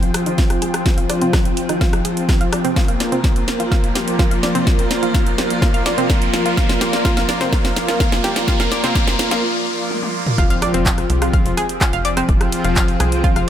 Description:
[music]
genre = melodic techno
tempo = 126 BPM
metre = 4/4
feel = straight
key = F dorian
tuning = A4 = 440 Hz
[part]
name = evolving wavetable pad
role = sustained chords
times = 0.0-13.5 s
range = F3 to D5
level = -26 LUFS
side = left 1 dB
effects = phaser, built-in reverb, sidechain pumping
[part]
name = brassy analog pad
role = stabs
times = 0.0-13.4 s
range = F3 to Bb4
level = -23 LUFS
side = left 1 dB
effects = chorus, sidechain pumping, dub echo
[part]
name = techno drum kit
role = drums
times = 0.0-13.5 s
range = handclaps, hi-hat, rim click, snare drum, toms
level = -23 LUFS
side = equal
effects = sidechain pumping on hats, sidechain pumping on toms
[part]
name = riser and impact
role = sound effects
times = 0.5-12.3 s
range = none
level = -28 LUFS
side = equal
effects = none
[part]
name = granular cloud pad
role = texture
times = 0.0-13.5 s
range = F4 to C6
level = -27 LUFS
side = right 1 dB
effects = built-in reverb, sidechain pumping
[part]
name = analog pluck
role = arpeggios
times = 0.3-13.4 s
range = C4 to F5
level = -24 LUFS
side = equal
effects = chorus, sidechain pumping, dub echo
[part]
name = electronic kick drum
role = drums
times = 0.4-13.3 s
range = none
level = -17 LUFS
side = equal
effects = none
[part]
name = tight sequencer bass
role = bass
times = 10.4-13.4 s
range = F1 to C2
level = -21 LUFS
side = equal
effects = sidechain pumping
[sound]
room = light reverb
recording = none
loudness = -15 LUFS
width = side -10 dB against mid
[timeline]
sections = 0.0-10.4 A section; 10.4-13.5 B section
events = build-up 0.0-10.4; drum fill 0.0-9.4, 9.9-10.4; filter sweep on synth arpeggio sound 0.0-10.4; filter sweep on analog synth pad 0.0-10.4; riser 0.5-10.4; break 9.4-10.4; drop 10.4-13.5; impact 10.4-12.3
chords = 0.0 Fm; 2.8 Bb6; 10.4 Fm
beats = 0.38 | 0.86 1.33 1.81 2.29 | 2.76 3.24 3.72 4.19 | 4.67 5.14 5.62 6.10 | 6.57 7.05 7.53 8.00 | 8.48 8.95 9.43 9.91 | 10.38 10.86 11.34 11.81 | 12.29 12.76 13.24

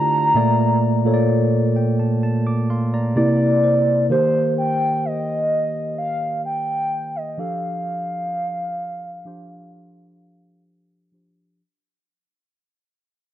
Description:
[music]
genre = R&B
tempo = 64 BPM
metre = 4/4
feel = straight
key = F major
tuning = A4 = 439 Hz
[part]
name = hollow clarinet-like synth lead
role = melody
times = 0.0-10.6 s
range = C5 to Bb5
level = -21 LUFS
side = equal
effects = chorus, analog delay
[part]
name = mellow tine electric piano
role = accompaniment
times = 0.0-11.6 s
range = Bb2 to D6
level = -20 LUFS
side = equal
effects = phaser
[sound]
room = light reverb, digital ambience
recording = dry, gritty hardware recording, cassette tape, low-pass filter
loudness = -18 LUFS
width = side -12 dB against mid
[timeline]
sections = 0.0-4.1 A section; 4.1-11.6 B section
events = tine electric piano fill 1.3-4.1; fade-out 4.1-11.6; filter sweep 4.1-11.6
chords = 0.3 Bbmaj7; 3.2 C9; 4.1 Eb6; 7.4 F69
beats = | 0.35 1.29 2.23 3.16 | 4.10 5.04 5.97 6.91 | 7.85 8.79 9.72 10.66

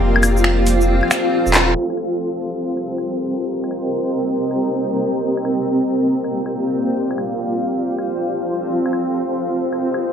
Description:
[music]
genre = future garage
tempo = 138 BPM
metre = 4/4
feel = swing 66% on 16ths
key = C dorian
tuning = A4 = 440 Hz
[part]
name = granular cloud pad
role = sustained chords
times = 0.0-10.1 s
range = Bb3 to Eb5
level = -19 LUFS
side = equal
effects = built-in reverb
[part]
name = warm sub bass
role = bass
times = 0.0-1.7 s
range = Eb1 to F1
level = -18 LUFS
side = equal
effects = none
[part]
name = backwards swelling texture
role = texture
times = 0.0-10.1 s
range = C4 to C5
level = -24 LUFS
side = right 1 dB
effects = built-in reverb
[part]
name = garage drum kit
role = drums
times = 0.2-10.0 s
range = claves, finger snaps, handclaps, hi-hat, shaker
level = -18 LUFS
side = left 1 dB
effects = low-pass filter on perc, low-pass filter on hats, low-pass filter on snare
[sound]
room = wet digital room reverb, RT60 1.2 s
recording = vinyl crackle, low-pass filter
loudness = -17 LUFS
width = side -8 dB against mid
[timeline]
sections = 0.0-1.8 A section; 1.8-10.1 B section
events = drum fill 1.5; band accent 1.5; filter sweep on ambient pad 1.8-10.1; filter sweep 1.8-10.1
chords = 0.0 F; 1.8 Cm7; 5.2 Bb6; 7.0 F; 8.7 Cm7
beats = | 0.01 0.45 0.88 1.32 | 1.75 2.19 2.62 3.06 | 3.49 3.93 4.36 4.80 | 5.23 5.67 6.10 6.54 | 6.97 7.40 7.84 8.27 | 8.71 9.14 9.58 10.01

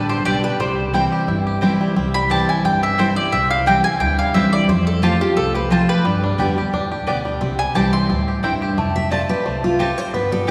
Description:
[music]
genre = bluegrass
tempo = 176 BPM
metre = 4/4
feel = straight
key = C major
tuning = A4 = 440 Hz
[part]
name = mandolin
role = melody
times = 0.0-8.4 s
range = F4 to C6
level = -23 LUFS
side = equal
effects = none
[part]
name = picked steel-string acoustic guitar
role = accompaniment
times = 0.0-10.5 s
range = F2 to E5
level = -22 LUFS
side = equal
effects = none
[part]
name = bluegrass banjo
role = arpeggios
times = 0.0-10.5 s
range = G3 to G4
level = -28 LUFS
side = equal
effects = none
[part]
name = upright bass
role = bass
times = 0.0-10.5 s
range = F1 to G2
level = -28 LUFS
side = equal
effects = none
[part]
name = mandolin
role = stabs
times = 0.3-10.5 s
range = B3 to A5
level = -29 LUFS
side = equal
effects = none
[sound]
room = wet concert hall reverb, RT60 2.4 s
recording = recorded in a church or concert hall, small room ambience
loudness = -18 LUFS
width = mono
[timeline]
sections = 0.0-8.8 A section; 8.8-10.5 B section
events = steel-string acoustic guitar solo 8.8-10.5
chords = 0.0 G; 0.6 C; 4.7 F; 6.1 G; 7.4 C; 8.8 F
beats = 0.26 | 0.60 0.94 1.28 1.62 | 1.96 2.30 2.64 2.98 | 3.33 3.67 4.01 4.35 | 4.69 5.03 5.37 5.71 | 6.05 6.39 6.73 7.07 | 7.41 7.75 8.10 8.44 | 8.78 9.12 9.46 9.80 | 10.14 10.48

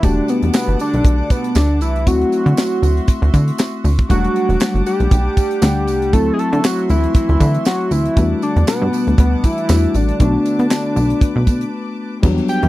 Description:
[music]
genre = early-eighties boogie funk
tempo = 118 BPM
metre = 4/4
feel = swing 56% on 16ths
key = E minor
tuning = A4 = 440 Hz
[part]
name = fat analog lead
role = melody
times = 0.0-12.7 s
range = B3 to G5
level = -19 LUFS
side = equal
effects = chorus
[part]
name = tine electric piano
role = accompaniment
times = 0.0-12.7 s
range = F#3 to F#5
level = -21 LUFS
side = left 3 dB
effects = none
[part]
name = rich studio string section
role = sustained chords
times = 0.0-12.7 s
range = E3 to D6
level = -31 LUFS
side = right 2 dB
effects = none
[part]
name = plucky analog bass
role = bass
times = 0.0-12.7 s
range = E1 to D3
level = -16 LUFS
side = equal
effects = none
[part]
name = tight funk drum kit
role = drums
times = 0.0-12.7 s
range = crash cymbal, handclaps, hi-hat, kick drum, snare drum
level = -15 LUFS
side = equal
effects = none
[part]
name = tambourine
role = percussion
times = 0.0-12.6 s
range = none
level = -35 LUFS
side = right 23 dB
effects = none
[sound]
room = little or no reverb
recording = dry, close 1970s-style studio recording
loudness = -13 LUFS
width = side -17 dB against mid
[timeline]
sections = 0.0-12.2 A section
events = break 11.7-12.2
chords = 0.0 Em11; 2.1 D9; 4.1 Em11; 6.1 D9; 8.2 Em11; 10.2 Bm7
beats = | 0.03 0.54 1.05 1.55 | 2.06 2.57 3.08 3.59 | 4.10 4.61 5.12 5.62 | 6.13 6.64 7.15 7.66 | 8.17 8.67 9.18 9.69 | 10.20 10.71 11.22 11.72 | 12.23

